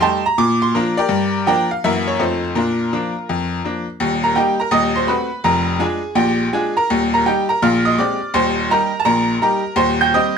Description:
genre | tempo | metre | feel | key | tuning
jazz, stride piano | 166 BPM | 4/4 | swing 65% on 8ths | Bb major, Eb major from 4.0 s | A4 = 440 Hz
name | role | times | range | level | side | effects
tack piano | solo | 0.0-10.4 s | Eb1 to G6 | -15 LUFS | equal | none
room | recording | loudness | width
moderate club reverb, RT60 0.7 s | none | -15 LUFS | side -6 dB against mid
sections
0.0-4.0 A section; 4.0-10.4 B section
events
none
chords
0.4 Bb; 1.1 Gm7; 1.8 Gb7; 2.2 F7; 2.6 Bb; 4.0 Eb; 4.7 Ebdim7; 5.4 Bb7/F; 6.9 Eb; 7.6 Bb13; 8.3 Eb; 9.8 Cm/Eb

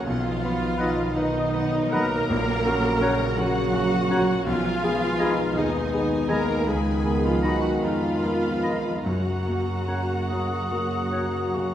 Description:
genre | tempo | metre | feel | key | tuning
classical | 48-57 BPM (dotted quarters) | 12/8 | rubato | F# major | A4 = 440 Hz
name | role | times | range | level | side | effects
clear grand piano | melody | 0.0-11.7 s | A#1 to B4 | -27 LUFS | left 1 dB | none
clear studio violin section | melody | 0.0-11.7 s | D#5 to B5 | -40 LUFS | left 3 dB | none
rich symphonic violin section | second line | 0.0-11.7 s | D#5 to A#5 | -35 LUFS | left 2 dB | none
rich symphonic viola section | accompaniment | 0.0-11.7 s | D#4 to A#4 | -28 LUFS | right 1 dB | none
mellow trumpet | stabs | 0.0-11.7 s | D#4 to A#4 | -33 LUFS | right 1 dB | none
clear symphonic double bass section | bass | 0.0-11.7 s | A#1 to F#2 | -31 LUFS | right 2 dB | none
rich symphonic cello section | bass | 0.0-11.7 s | D#3 to A#3 | -32 LUFS | right 2 dB | none
mellow French horn section | sustained chords | 0.1-11.7 s | A#3 to B4 | -34 LUFS | left 5 dB | none
mellow trombone section | sustained chords | 0.1-11.7 s | C#3 to G#3 | -32 LUFS | right 2 dB | none
clear oboe | second line | 0.8-11.3 s | F#5 to A#5 | -38 LUFS | equal | none
mellow hollow silver concert flute | second line | 0.8-11.7 s | A#5 to D#6 | -35 LUFS | left 2 dB | none
warm clarinet | second line | 0.8-11.3 s | C#5 to D#5 | -36 LUFS | left 2 dB | none
room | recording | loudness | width
wet concert hall reverb, RT60 2.0 s | dark, warm production | -21 LUFS | side -10 dB against mid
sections
0.0-11.7 A section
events
none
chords
0.1 B; 2.3 F#/A#; 4.5 B6; 6.7 C#13; 9.0 F#

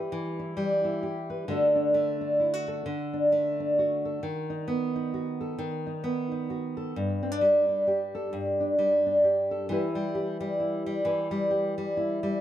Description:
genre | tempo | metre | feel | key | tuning
folk, solo fingerstyle acoustic guitar | 132 BPM | 3/4 | swing 59% on 8ths | E minor | A4 = 441 Hz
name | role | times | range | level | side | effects
nylon-string guitar | solo | 0.0-12.4 s | G2 to B4 | -25 LUFS | equal | slapback echo
room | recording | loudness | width
little or no reverb | close, detailed microphones | -25 LUFS | side -11 dB against mid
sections
0.0-9.7 A section; 9.7-12.4 B section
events
none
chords
0.0 Em; 1.5 D; 4.2 B/D#; 6.9 G5; 9.7 Em

